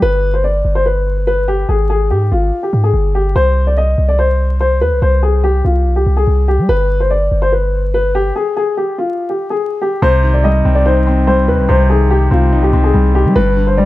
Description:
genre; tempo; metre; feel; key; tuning
hip hop, drill; 144 BPM; 4/4; half-time; C harmonic minor; A4 = 440 Hz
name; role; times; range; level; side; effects
dark upright piano; melody; 0.0-13.9 s; F4 to Eb5; -15 LUFS; left 2 dB; none
long sustained 808-style bass; bass; 0.0-13.9 s; G1 to G3; -13 LUFS; equal; none
dark baby grand piano; accompaniment; 10.0-13.9 s; G2 to Eb4; -15 LUFS; left 1 dB; none
room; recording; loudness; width
studio reverb; vinyl crackle; -11 LUFS; side -16 dB against mid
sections
0.0-10.0 A section; 10.0-13.9 B section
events
stop 8.4-10.0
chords
0.0 G; 1.7 Fmadd9 (rootless); 3.4 N.C.; 6.7 G; 8.4 N.C.; 10.0 Cm

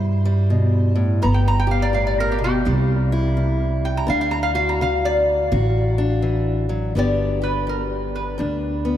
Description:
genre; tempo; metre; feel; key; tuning
acoustic country blues, solo or duo; 84 BPM; 4/4; swing 63% on 8ths; G major; A4 = 438 Hz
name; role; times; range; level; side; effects
lap resonator guitar; melody; 0.0-9.0 s; G4 to Bb5; -24 LUFS; equal; none
fingerpicked steel-string acoustic guitar; accompaniment; 0.0-9.0 s; G2 to G4; -24 LUFS; left 2 dB; none
upright bass; bass; 0.0-9.0 s; G1 to G2; -20 LUFS; right 1 dB; none
room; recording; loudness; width
moderate cathedral reverb, RT60 6.4 s; in a vast, echoing space; -18 LUFS; side -11 dB against mid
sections
0.0-7.0 A section; 7.0-9.0 B section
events
resonator guitar played with a steel bar solo 0.0-7.0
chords
0.0 C; 1.2 G; 2.7 C; 4.1 D; 7.0 G

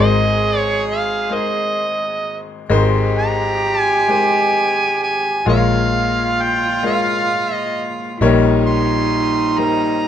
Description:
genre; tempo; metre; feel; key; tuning
acoustic folk-pop ballad; 44 BPM (dotted quarters); 6/8; straight; unclear; A4 = 442 Hz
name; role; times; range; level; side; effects
overdriven harmonica; melody; 0.0-10.1 s; Eb5 to C6; -19 LUFS; right 2 dB; none
warm cello; second line; 0.0-10.1 s; Eb4 to Ab4; -21 LUFS; right 3 dB; none
bright upright piano; accompaniment; 0.0-10.1 s; Ab1 to Db5; -20 LUFS; left 4 dB; none
vintage muted fingered electric bass; bass; 0.0-10.1 s; Ab1 to Bb1; -20 LUFS; equal; none
room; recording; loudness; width
light reverb; minimal, uncompressed stereo recording; -15 LUFS; side -9 dB against mid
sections
0.0-10.1 A section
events
none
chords
0.0 Abadd9; 5.5 Bbm7; 8.2 Eb7/Bb

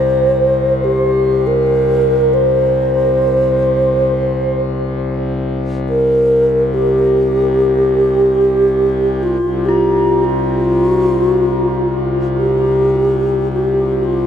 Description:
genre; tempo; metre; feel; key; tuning
world meditative, free-time meditation music; free time; none; none; unclear; A4 = 441 Hz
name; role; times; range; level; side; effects
mellow hollow bass flute; melody; 0.0-14.3 s; F4 to C5; -13 LUFS; equal; shimmer reverb, diffuse ambient delay
hand-pumped harmonium; drone; 0.0-14.3 s; C2; -18 LUFS; left 2 dB; stereo widening
bronze singing bowl; texture; 9.7-14.3 s; F4; -21 LUFS; right 2 dB; shimmer reverb
room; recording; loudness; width
wet huge ambient reverb, RT60 7.7 s; dark, warm production; -12 LUFS; side -8 dB against mid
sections
0.0-14.3 A section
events
none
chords
none

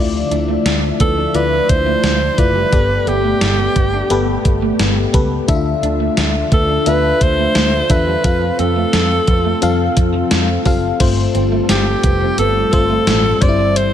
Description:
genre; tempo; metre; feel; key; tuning
1980s-style pop; 87 BPM; 4/4; straight; unclear; A4 = 440 Hz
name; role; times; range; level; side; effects
FM electric piano; accompaniment; 0.0-13.9 s; G2 to F5; -19 LUFS; left 5 dB; chorus
string machine, cellos; sustained chords; 0.0-13.9 s; F3 to E5; -25 LUFS; equal; ensemble chorus
vintage muted fingered electric bass; bass; 0.0-13.9 s; F1 to F2; -20 LUFS; equal; none
electric guitar at the edge of break-up; riff; 0.1-13.7 s; F3 to D4; -25 LUFS; right 7 dB; analog chorus, tape echo
gated 80s digital drum machine; drums; 0.3-13.9 s; crash cymbal, hi-hat, kick drum, snare drum, tambourine; -17 LUFS; equal; gated reverb, gated reverb snare
clear alto saxophone; melody; 1.0-13.9 s; G4 to D5; -18 LUFS; right 1 dB; none
room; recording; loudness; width
light reverb, digital ambience; none; -12 LUFS; side -10 dB against mid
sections
0.0-11.0 A section; 11.0-13.9 B section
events
none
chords
0.0 Dmadd9; 2.7 Gadd9; 5.5 Dmadd9; 8.2 F; 13.4 C/G

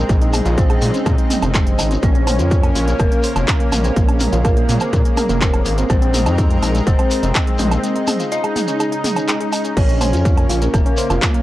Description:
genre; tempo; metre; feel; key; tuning
melodic techno; 124 BPM; 4/4; straight; Bb minor; A4 = 440 Hz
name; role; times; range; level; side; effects
wide unison lead; melody; 0.0-11.4 s; Bb3 to Eb4; -24 LUFS; equal; analog chorus, sidechain pumping, analog delay
dark detuned synth bell; second line; 0.0-11.4 s; Bb4 to Eb5; -28 LUFS; left 1 dB; chorus, phaser, sidechain pumping, analog delay
lush unison pad; sustained chords; 0.0-11.4 s; Db3 to Bb4; -26 LUFS; equal; chorus, sidechain pumping
gritty driven synth bass; bass; 0.0-11.2 s; F1 to Bb2; -19 LUFS; equal; sidechain pumping
woody wave-folded pluck; arpeggios; 0.1-11.4 s; Ab3 to C6; -24 LUFS; equal; chorus, cassette tape, sidechain pumping, analog delay
electronic kick drum; drums; 0.1-11.3 s; none; -16 LUFS; equal; none
techno drum kit; drums; 0.1-11.4 s; crash cymbal, handclaps, hi-hat, toms, woodblock; -22 LUFS; right 2 dB; sidechain pumping on hats, sidechain pumping on cymbals, sidechain pumping on toms, sidechain pumping on perc
shekere; percussion; 0.1-11.3 s; none; -29 LUFS; left 2 dB; none
room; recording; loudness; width
digital ambience; dry, gritty hardware recording, cassette tape; -14 LUFS; side -15 dB against mid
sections
0.0-11.4 A section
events
break 7.8-9.8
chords
0.1 Dbadd9/Bb; 2.0 Bbmadd9; 5.9 Abadd9/Bb; 7.8 Dbadd9; 9.8 Bbmadd9

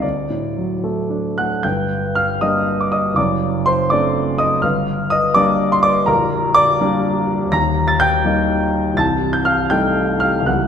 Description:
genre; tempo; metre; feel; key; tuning
classical, romantic character piece for solo piano; 73-86 BPM (dotted quarters); 6/8; rubato; G minor; A4 = 439 Hz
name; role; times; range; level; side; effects
clear grand piano; solo; 0.0-10.7 s; Bb0 to Bb6; -15 LUFS; equal; none
room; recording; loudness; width
moderate concert hall reverb, RT60 2.3 s; minimal, uncompressed stereo recording; -15 LUFS; side -8 dB against mid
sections
0.0-1.6 A section; 1.6-10.7 B section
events
none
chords
0.0 D; 1.6 Gm; 3.2 D7/F#; 4.6 Gm; 6.1 Gm/Bb; 7.5 Eb; 9.0 Am7b5/C

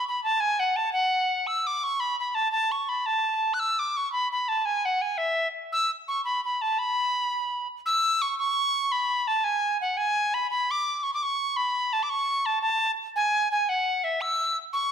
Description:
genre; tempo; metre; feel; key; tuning
celtic folk; 113 BPM (dotted quarters); 6/8; straight; B dorian; A4 = 440 Hz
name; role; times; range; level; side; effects
bright wooden whistle; solo; 0.0-14.9 s; E5 to F#6; -24 LUFS; equal; none
room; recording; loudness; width
moderate recital hall reverb, RT60 1.6 s; none; -24 LUFS; side -7 dB against mid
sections
0.0-7.8 A section; 7.8-14.9 B section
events
none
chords
none

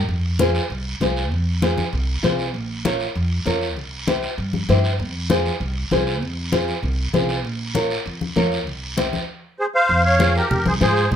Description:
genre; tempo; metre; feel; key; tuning
latin, cumbia; 196 BPM; 4/4; straight; F minor; A4 = 436 Hz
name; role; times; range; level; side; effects
upright bass; bass; 0.0-11.2 s; Bb1 to Ab2; -23 LUFS; equal; none
congas; percussion; 0.1-11.2 s; none; -25 LUFS; left 3 dB; none
guiro; percussion; 0.1-11.2 s; none; -30 LUFS; right 3 dB; none
nylon-string guitar; accompaniment; 0.4-11.0 s; E4 to Db5; -22 LUFS; left 1 dB; none
musette accordion; melody; 9.6-11.2 s; G4 to F5; -17 LUFS; equal; none
room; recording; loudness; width
moderate studio reverb, RT60 0.5 s; minimal, uncompressed stereo recording; -19 LUFS; side -9 dB against mid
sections
0.1-9.9 A section; 9.9-11.2 B section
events
none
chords
0.1 Fm; 2.5 Bbm; 3.8 C; 5.0 Fm; 7.4 Bbm; 8.7 C; 9.3 Ab6 (rootless); 9.9 Fm

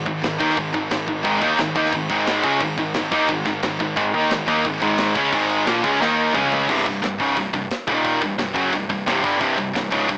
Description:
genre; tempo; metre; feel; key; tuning
heavy metal; 176 BPM; 4/4; straight; C minor from 6.7 s; A4 = 440 Hz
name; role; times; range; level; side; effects
heavy high-gain guitar; riff; 0.0-10.2 s; C2 to Eb4; -20 LUFS; equal; distortion
heavy high-gain guitar; riff; 0.0-10.2 s; C2 to Eb4; -24 LUFS; right 1 dB; distortion
thick fuzz guitar; riff; 0.0-6.7 s; Ab2 to Eb4; -27 LUFS; equal; distortion
overdriven picked electric bass; bass; 0.0-10.2 s; C1 to Eb2; -36 LUFS; equal; none
tight metal drum kit; drums; 0.1-10.2 s; crash cymbal, hi-hat, kick drum, snare drum, toms; -28 LUFS; equal; cassette tape
room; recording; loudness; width
light reverb, small room ambience; home recording on cassette, small speaker sound; -18 LUFS; side -33 dB against mid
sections
0.0-6.7 A section; 6.7-10.2 B section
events
drum fill 6.0-6.7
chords
0.0 Ab5; 6.0 Eb5; 6.3 Db5; 6.7 C5; 7.9 Eb5; 8.2 C5

